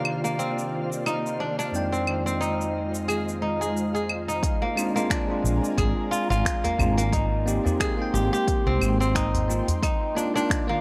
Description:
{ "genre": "organic downtempo", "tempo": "89 BPM", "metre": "4/4", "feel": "swing 56% on 16ths", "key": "unclear", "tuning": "A4 = 440 Hz", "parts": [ { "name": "bell-like tine electric piano", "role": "accompaniment", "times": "0.0-10.8 s", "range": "F2 to G5", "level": "-32 LUFS", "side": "equal", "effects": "sidechain pumping, analog delay" }, { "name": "ethereal airy pad", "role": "sustained chords", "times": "0.0-10.8 s", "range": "Eb3 to D6", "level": "-35 LUFS", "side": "equal", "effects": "ensemble chorus, built-in reverb, sidechain pumping" }, { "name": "kora", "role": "arpeggios", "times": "0.0-10.8 s", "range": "Bb3 to Ab4", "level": "-30 LUFS", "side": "equal", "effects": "analog delay" }, { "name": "twinkling granular texture", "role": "texture", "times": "0.0-4.4 s", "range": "F4 to F5", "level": "-45 LUFS", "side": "equal", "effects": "none" }, { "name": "organic electronic drum kit", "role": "drums", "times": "0.1-10.7 s", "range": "cabasa, claves, finger snaps, hi-hat", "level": "-34 LUFS", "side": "equal", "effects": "overdrive, small room ambience" }, { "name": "electronic kick drum", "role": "drums", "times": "4.4-10.7 s", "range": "none", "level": "-30 LUFS", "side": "equal", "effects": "overdrive, small room ambience" }, { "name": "woody fretless electric bass", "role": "bass", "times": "5.4-9.6 s", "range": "Ab1 to C2", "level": "-27 LUFS", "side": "equal", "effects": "sidechain pumping" }, { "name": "udu", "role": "percussion", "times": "6.6-9.8 s", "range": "none", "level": "-30 LUFS", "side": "equal", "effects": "none" } ], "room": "light reverb, digital ambience", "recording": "dry, gritty hardware recording", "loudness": "-25 LUFS", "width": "mono", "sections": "0.0-4.4 A section; 4.4-10.8 B section", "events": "none", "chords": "0.0 Cm11; 1.7 Fm7; 4.4 Bb7; 7.1 Abmaj7; 9.8 Cm11" }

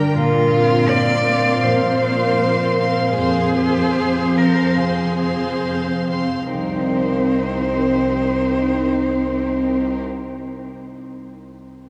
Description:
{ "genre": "cinematic, emotional film score for orchestra", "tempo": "65-84 BPM", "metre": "4/4", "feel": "rubato", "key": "C minor", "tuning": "A4 = 440 Hz", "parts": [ { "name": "rich studio violin section", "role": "second line", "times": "0.0-10.0 s", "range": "G4 to C6", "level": "-32 LUFS", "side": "equal", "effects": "none" }, { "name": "rich studio viola section", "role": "accompaniment", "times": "0.0-10.0 s", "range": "C4 to C5", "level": "-26 LUFS", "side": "equal", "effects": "none" }, { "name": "concert harp", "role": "arpeggios", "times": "0.0-10.4 s", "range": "F2 to Eb5", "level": "-24 LUFS", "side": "equal", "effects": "none" }, { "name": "rich studio cello section", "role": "bass", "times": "0.0-10.0 s", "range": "C2 to Bb2", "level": "-25 LUFS", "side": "equal", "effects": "none" }, { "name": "rich cello", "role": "melody", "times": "0.1-10.0 s", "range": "F4 to D5", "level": "-25 LUFS", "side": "equal", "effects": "none" } ], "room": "wet cathedral reverb, RT60 6.2 s", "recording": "recorded in a church or concert hall, small room reverb", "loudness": "-18 LUFS", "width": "mono", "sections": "0.0-6.5 A section; 6.5-10.1 B section", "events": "slowing down 0.0-6.5", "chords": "0.1 Bbsus2; 3.2 Fm; 6.5 Cm7" }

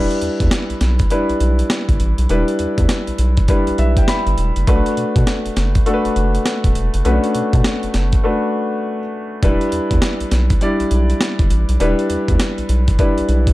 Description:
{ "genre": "R&B, new jack swing", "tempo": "101 BPM", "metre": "4/4", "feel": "swing 62% on 16ths", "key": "E minor", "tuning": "A4 = 440 Hz", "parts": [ { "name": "warm concert grand piano", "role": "accompaniment", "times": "0.0-13.5 s", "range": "G3 to B5", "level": "-19 LUFS", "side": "left 1 dB", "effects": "none" }, { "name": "round analog bass", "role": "bass", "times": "0.0-13.5 s", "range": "E1 to B2", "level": "-17 LUFS", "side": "equal", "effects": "none" }, { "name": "breakbeat sampler-style drum kit", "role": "drums", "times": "0.1-13.5 s", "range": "hi-hat, kick drum, snare drum", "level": "-18 LUFS", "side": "equal", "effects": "none" } ], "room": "digital ambience", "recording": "dark, warm production", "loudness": "-14 LUFS", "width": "side -17 dB against mid", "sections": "0.0-13.5 A section", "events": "grand piano fill 3.5-4.7, 13.3; break 8.2-9.4", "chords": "0.0 Em7; 4.7 Bm7; 9.4 Em7" }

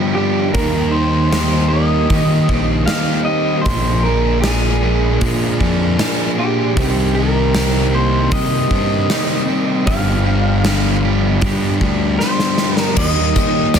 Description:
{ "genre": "rock, shoegaze and dream pop", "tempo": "77 BPM", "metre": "4/4", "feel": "straight", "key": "C minor", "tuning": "A4 = 440 Hz", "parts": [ { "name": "electric guitar through a small old amp", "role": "arpeggios", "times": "0.0-13.8 s", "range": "Eb3 to G4", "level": "-26 LUFS", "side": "left 4 dB", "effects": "wide subtle chorus, analog delay" }, { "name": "overdriven semi-hollow guitar", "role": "riff", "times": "0.0-13.8 s", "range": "G2 to Ab4", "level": "-21 LUFS", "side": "right 11 dB", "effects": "reverse reverb" }, { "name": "thick fuzz guitar", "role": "riff", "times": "0.0-13.8 s", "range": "G2 to Eb4", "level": "-21 LUFS", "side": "left 10 dB", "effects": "distortion, wide subtle chorus" }, { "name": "electric guitar through a small old amp", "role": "melody", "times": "0.1-13.8 s", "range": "G4 to F5", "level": "-21 LUFS", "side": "right 2 dB", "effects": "analog delay" }, { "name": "fuzz fingered electric bass", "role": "bass", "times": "0.5-13.8 s", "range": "G1 to Eb3", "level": "-18 LUFS", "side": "equal", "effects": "overdrive" }, { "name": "gated 80s drum kit", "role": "drums", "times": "0.5-13.8 s", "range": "crash cymbal, hi-hat, kick drum, snare drum", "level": "-20 LUFS", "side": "equal", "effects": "none" }, { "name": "tambourine", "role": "percussion", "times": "13.0-13.8 s", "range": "none", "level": "-28 LUFS", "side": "left 16 dB", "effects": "none" } ], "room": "small room ambience", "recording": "dense, heavily limited modern master", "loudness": "-14 LUFS", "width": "side -7 dB against mid", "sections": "0.0-13.0 A section", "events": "drum fill 12.2-13.0", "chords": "0.0 G5; 0.5 Eb6; 3.7 Bb7; 6.8 Cm7; 9.9 G7sus4; 13.0 Eb" }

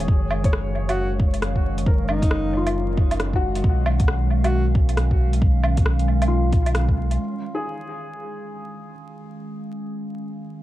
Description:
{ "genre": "future garage", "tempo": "135 BPM", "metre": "4/4", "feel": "swing 62% on 16ths", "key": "unclear", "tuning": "A4 = 440 Hz", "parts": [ { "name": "felt-muted upright piano", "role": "accompaniment", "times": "0.0-10.6 s", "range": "F4 to Db5", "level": "-31 LUFS", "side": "left 3 dB", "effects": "sidechain pumping, dub echo" }, { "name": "warbly tape-like pad", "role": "sustained chords", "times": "0.0-10.6 s", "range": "D#3 to F5", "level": "-29 LUFS", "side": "equal", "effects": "chorus, built-in reverb, sidechain pumping" }, { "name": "warm sub bass", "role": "bass", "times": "0.0-7.2 s", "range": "Gb1 to B1", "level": "-22 LUFS", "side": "equal", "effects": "tube saturation, sidechain pumping" }, { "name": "deep house drum kit", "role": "drums", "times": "0.0-7.2 s", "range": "hi-hat, rim click, woodblock", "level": "-28 LUFS", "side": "right 1 dB", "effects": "low-pass filter on perc, low-pass filter on hats, low-pass filter on snare, analog delay" }, { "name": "flickering grainy texture", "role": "texture", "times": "0.0-7.2 s", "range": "Db5", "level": "-41 LUFS", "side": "right 2 dB", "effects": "none" }, { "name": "electronic kick drum", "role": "drums", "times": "0.1-7.0 s", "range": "none", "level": "-20 LUFS", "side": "equal", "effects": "none" }, { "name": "warm alto saxophone", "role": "melody", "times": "0.9-4.7 s", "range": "Eb4 to Gb4", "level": "-30 LUFS", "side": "equal", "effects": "vintage 12-bit sampler grit, analog delay" } ], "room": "little or no reverb", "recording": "echo-heavy mix, vinyl crackle", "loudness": "-18 LUFS", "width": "side -15 dB against mid", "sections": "0.0-7.2 A section; 7.2-10.6 B section", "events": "band accent 6.7; filter sweep on ambient pad 7.2-10.6", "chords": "0.1 Gbmaj7; 3.6 Badd9; 7.2 Db" }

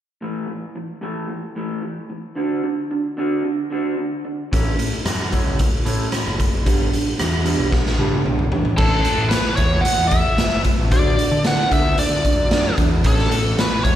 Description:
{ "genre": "quiet-loud alternative rock", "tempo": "112 BPM", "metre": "4/4", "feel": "straight", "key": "A major", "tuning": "A4 = 440 Hz", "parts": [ { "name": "electric guitar through a small old amp", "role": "arpeggios", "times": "0.2-14.0 s", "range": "A2 to F#4", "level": "-24 LUFS", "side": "right 2 dB", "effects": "slapback echo" }, { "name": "growling picked electric bass", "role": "bass", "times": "4.5-14.0 s", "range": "F#1 to D3", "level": "-22 LUFS", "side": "equal", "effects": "overdrive" }, { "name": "raw garage drum kit", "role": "drums", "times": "4.5-14.0 s", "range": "crash cymbal, hi-hat, kick drum, rim click, snare drum, toms", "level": "-19 LUFS", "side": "equal", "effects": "none" }, { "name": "biting lead guitar", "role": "melody", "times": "8.8-14.0 s", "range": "A4 to F#5", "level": "-21 LUFS", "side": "equal", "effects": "overdrive, slapback echo" } ], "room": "light reverb, studio ambience", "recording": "live gig heard through the venue's PA, recital hall reverb", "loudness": "-17 LUFS", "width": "side -11 dB against mid", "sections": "0.2-8.8 A section; 8.8-14.0 B section", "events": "drum fill 7.7-8.8", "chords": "0.2 A5; 2.4 D; 4.5 A; 6.7 G; 8.8 A5; 10.9 D; 13.0 A" }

